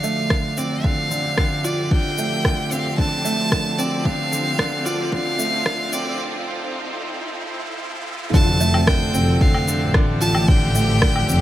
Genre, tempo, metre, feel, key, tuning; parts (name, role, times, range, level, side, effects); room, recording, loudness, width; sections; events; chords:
piano and strings electronica; 112 BPM; 4/4; straight; F major; A4 = 440 Hz
clear violin; melody; 0.0-11.4 s; D5 to A5; -24 LUFS; equal
clear symphonic string section; sustained chords; 0.0-11.4 s; F3 to A4; -28 LUFS; left 1 dB; sidechain pumping, low-pass filter
clear upright piano; riff; 0.0-11.4 s; D3 to F4; -24 LUFS; right 1 dB
electronic shaker, rim click and woodblock; drums; 0.0-11.4 s; -24 LUFS; equal
riser; sound effects; 4.7-8.3 s; -35 LUFS; equal
electronic kick drum; drums; 0.3-11.1 s; -18 LUFS; equal
dark chamber double bass section; bass; 8.3-11.4 s; F1 to A1; -21 LUFS; equal; sidechain pumping
light reverb; high-pass filter; -18 LUFS; side -13 dB against mid
0.0-8.3 A section; 8.3-11.4 B section
build-up 0.0-8.3; filter sweep on string section 0.0-8.3; riser 4.7-8.3; break 6.2-8.3; drop 8.3-11.4
0.0 F6